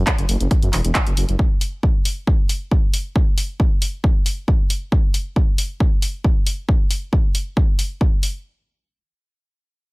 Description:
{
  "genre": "driving peak-time techno",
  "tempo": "136 BPM",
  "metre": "4/4",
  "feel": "straight",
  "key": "unclear",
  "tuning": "A4 = 440 Hz",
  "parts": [
    { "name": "detuned saw bass", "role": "bass", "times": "0.0-1.4 s", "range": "E1 to F#2", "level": "-19 LUFS", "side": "equal", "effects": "sidechain pumping" },
    { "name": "electronic kick drum", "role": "drums", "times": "0.1-8.1 s", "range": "none", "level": "-17 LUFS", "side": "equal", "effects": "none" },
    { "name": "punchy analog drum machine", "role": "drums", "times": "0.1-8.3 s", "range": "handclaps, hi-hat", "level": "-23 LUFS", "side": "equal", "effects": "none" }
  ],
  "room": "digital ambience",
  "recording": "none",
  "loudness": "-17 LUFS",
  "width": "side -25 dB against mid",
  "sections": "0.0-8.4 A section",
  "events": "filter sweep on detuned saw bass 0.0-1.4",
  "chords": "none",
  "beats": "0.07 0.51 0.95 | 1.39 1.83 2.27 2.71 | 3.16 3.60 4.04 4.48 | 4.92 5.36 5.80 6.24 | 6.68 7.13 7.57 8.01"
}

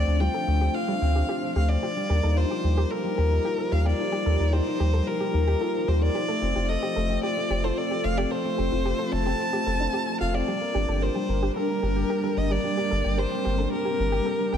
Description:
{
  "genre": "piano and strings electronica",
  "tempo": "111 BPM",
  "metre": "4/4",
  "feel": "straight",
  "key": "G minor",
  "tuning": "A4 = 440 Hz",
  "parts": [
    { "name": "warm violin", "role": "melody", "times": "0.0-14.6 s", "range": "Bb4 to A5", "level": "-29 LUFS", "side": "equal", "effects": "ping-pong delay" },
    { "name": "granular cloud pad", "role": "sustained chords", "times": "0.0-14.6 s", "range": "G3 to F5", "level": "-31 LUFS", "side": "right 1 dB", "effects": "built-in reverb" },
    { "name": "felt-muted upright piano", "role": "riff", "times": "0.0-14.6 s", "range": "F3 to Bb4", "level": "-29 LUFS", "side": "left 4 dB", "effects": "none" },
    { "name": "warm sub bass", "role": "bass", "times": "0.0-14.6 s", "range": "F1 to Eb2", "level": "-24 LUFS", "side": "equal", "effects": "none" },
    { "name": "soft round pluck", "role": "arpeggios", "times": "0.2-14.6 s", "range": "G3 to A4", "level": "-35 LUFS", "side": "right 3 dB", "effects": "chorus, ping-pong delay" }
  ],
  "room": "light reverb, small room ambience",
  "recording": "none",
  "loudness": "-23 LUFS",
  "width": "side -8 dB against mid",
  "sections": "0.0-14.6 A section",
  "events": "none",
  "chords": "0.0 Dm7; 1.8 Ebadd9; 6.2 F; 10.5 Gm",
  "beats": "0.21 0.75 1.29 | 1.83 2.37 2.91 3.45 | 3.99 4.53 5.07 5.61 | 6.15 6.69 7.23 7.77 | 8.31 8.86 9.40 9.94 | 10.48 11.02 11.56 12.10 | 12.64 13.18 13.72 14.26"
}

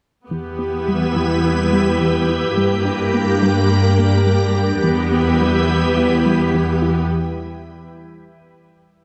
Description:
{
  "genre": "cinematic",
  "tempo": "106 BPM",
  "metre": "4/4",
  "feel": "straight",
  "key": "unclear",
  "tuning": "A4 = 442 Hz",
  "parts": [
    { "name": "warm symphonic viola section", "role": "accompaniment", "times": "0.3-7.1 s", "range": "Bb3 to G4", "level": "-23 LUFS", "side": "equal", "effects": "none" },
    { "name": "organ-like drone", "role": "sustained chords", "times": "0.3-7.1 s", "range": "G3 to B4", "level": "-23 LUFS", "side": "equal", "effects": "ensemble chorus, built-in reverb, phaser" },
    { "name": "soft round pluck", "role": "arpeggios", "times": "0.3-7.0 s", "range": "E3 to G4", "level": "-26 LUFS", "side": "equal", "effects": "none" },
    { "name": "warm symphonic cello section", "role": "bass", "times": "0.3-7.1 s", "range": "E2 to G2", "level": "-22 LUFS", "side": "equal", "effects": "none" }
  ],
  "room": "moderate concert hall reverb, RT60 2.2 s",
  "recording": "none",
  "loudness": "-17 LUFS",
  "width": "mono",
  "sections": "0.3-9.0 A section",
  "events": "break 7.1-9.0",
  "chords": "0.3 Em; 2.6 Gm; 4.8 Em; 7.1 N.C.",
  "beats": "| 0.31 0.87 1.44 2.00 | 2.57 3.14 3.70 4.27 | 4.83 5.40 5.97 6.53 | 7.10"
}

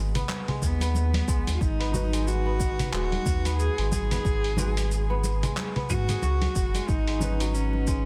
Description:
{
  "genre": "organic downtempo",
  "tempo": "91 BPM",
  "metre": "4/4",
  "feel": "swing 58% on 16ths",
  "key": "G# minor pentatonic",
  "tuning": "A4 = 439 Hz",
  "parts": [
    { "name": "kora", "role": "arpeggios", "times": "0.0-8.1 s", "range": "F#3 to G#4", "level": "-38 LUFS", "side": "equal", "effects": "tape echo" },
    { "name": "warm sub bass", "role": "bass", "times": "0.0-8.1 s", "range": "D#1 to G#2", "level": "-29 LUFS", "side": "equal", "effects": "sidechain pumping" },
    { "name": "dusty soul sampler-style drum kit", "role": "drums", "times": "0.2-8.0 s", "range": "congas, handclaps, hi-hat, shaker", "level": "-36 LUFS", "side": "equal", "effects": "none" },
    { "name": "congas", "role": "percussion", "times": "0.3-8.0 s", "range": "none", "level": "-37 LUFS", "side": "equal", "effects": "none" },
    { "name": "dark cello", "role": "melody", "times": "0.6-8.1 s", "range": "B3 to G#4", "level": "-34 LUFS", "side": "equal", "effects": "delay" },
    { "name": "electronic kick drum", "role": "drums", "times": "0.6-8.0 s", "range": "none", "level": "-30 LUFS", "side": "equal", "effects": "none" },
    { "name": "muted felt-like synth keys", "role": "accompaniment", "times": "1.9-8.1 s", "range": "C#4 to B4", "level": "-40 LUFS", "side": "equal", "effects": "chorus, sidechain pumping, tape echo" }
  ],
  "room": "digital ambience",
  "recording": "dense, heavily limited modern master",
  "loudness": "-26 LUFS",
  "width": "mono",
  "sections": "0.0-8.1 A section",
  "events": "none",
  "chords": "0.0 G#m7",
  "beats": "0.29 0.95 | 1.61 2.27 2.93 3.59 | 4.25 4.91 5.57 6.23 | 6.88 7.54"
}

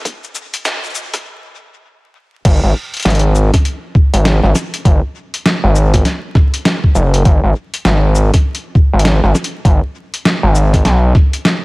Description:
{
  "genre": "glitch hop",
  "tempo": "100 BPM",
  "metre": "4/4",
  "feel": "swing 62% on 16ths",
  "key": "G# minor pentatonic",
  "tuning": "A4 = 439 Hz",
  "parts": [
    { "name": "boom bap sampler-style drum kit", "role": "drums", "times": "0.0-11.6 s", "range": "crash cymbal, hi-hat, shaker, snare drum", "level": "-17 LUFS", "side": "equal", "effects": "high-pass filter on perc, high-pass filter on snare, high-pass filter on hats, high-pass filter on cymbals" },
    { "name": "electronic kick drum", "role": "drums", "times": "0.1-11.3 s", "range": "none", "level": "-11 LUFS", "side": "equal", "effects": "high-pass filter on kick" },
    { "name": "gritty driven synth bass", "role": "bass", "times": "2.5-11.1 s", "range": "F#1 to B1", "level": "-11 LUFS", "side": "equal", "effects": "tube saturation" }
  ],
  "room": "little or no reverb",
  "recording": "echo-heavy mix, vinyl crackle, high-pass filter",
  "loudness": "-11 LUFS",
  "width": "side -24 dB against mid",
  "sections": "0.0-2.5 A section; 2.5-11.6 B section",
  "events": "build-up 0.0-2.5; filter sweep 0.0-2.5; stop 1.3-2.5; drop 2.5-11.6",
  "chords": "none",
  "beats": "| 0.05 0.65 1.25 1.85 | 2.45 3.05 3.65 4.25 | 4.85 5.45 6.05 6.65 | 7.25 7.85 8.45 9.05 | 9.65 10.25 10.85 11.45"
}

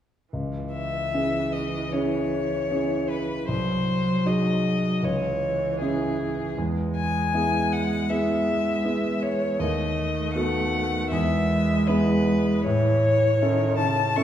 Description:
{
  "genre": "classical, slow romantic movement for piano trio",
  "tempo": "78 BPM",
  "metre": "4/4",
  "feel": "rubato",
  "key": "C# minor",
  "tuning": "A4 = 440 Hz",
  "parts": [
    { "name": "rich cello", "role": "second line", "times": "0.3-14.2 s", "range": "C#3 to A3", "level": "-28 LUFS", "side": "right 2 dB", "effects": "none" },
    { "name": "clear concert grand piano", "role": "accompaniment", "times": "0.3-14.2 s", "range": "B#1 to A4", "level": "-26 LUFS", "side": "right 1 dB", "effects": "none" },
    { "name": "clear violin", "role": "melody", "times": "0.7-14.2 s", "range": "G#4 to C#6", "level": "-26 LUFS", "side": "left 3 dB", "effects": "none" }
  ],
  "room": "wet recital hall reverb, RT60 1.5 s",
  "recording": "heard from further back in the room",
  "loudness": "-22 LUFS",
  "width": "side -10 dB against mid",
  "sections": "0.3-14.2 A section",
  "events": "none",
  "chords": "0.3 C#m; 3.5 G#7/B#; 5.0 C#m; 6.6 E; 9.6 B7/D#; 11.1 E; 12.6 A",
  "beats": "| 0.34 1.15 1.93 2.71 | 3.49 4.26 5.03 5.81 | 6.58 7.34 8.11 8.86 | 9.61 10.36 11.11 11.88 | 12.65 13.41 14.17"
}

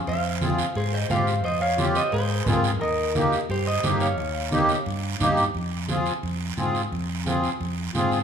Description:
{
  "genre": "latin, cumbia",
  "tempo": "175 BPM",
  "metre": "4/4",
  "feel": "straight",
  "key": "F minor",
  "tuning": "A4 = 439 Hz",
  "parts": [
    { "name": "clean electric guitar", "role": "melody", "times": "0.1-5.2 s", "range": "G4 to F5", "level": "-26 LUFS", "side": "equal", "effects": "spring reverb" },
    { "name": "fingered electric bass", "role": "bass", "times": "0.1-8.2 s", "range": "Eb2 to Ab2", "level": "-28 LUFS", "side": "equal", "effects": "none" },
    { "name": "congas", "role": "percussion", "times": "0.1-8.1 s", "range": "none", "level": "-29 LUFS", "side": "right 1 dB", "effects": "none" },
    { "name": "guiro", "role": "percussion", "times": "0.1-8.2 s", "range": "none", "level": "-34 LUFS", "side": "right 7 dB", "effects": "none" },
    { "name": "accordion", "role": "accompaniment", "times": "0.4-8.2 s", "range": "Bb3 to Ab4", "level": "-26 LUFS", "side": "equal", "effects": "light tremolo tuning" }
  ],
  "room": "moderate large studio reverb, RT60 1.2 s",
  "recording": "band playing live in one room",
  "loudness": "-22 LUFS",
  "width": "side -7 dB against mid",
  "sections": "0.0-5.5 A section; 5.5-8.2 B section",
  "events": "none",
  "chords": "0.1 Fm; 2.8 Ebadd9; 5.5 Fm",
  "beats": "| 0.07 0.41 0.76 1.10 | 1.44 1.78 2.12 2.47 | 2.81 3.15 3.49 3.83 | 4.18 4.52 4.86 5.21 | 5.55 5.89 6.23 6.58 | 6.92 7.26 7.61 7.95"
}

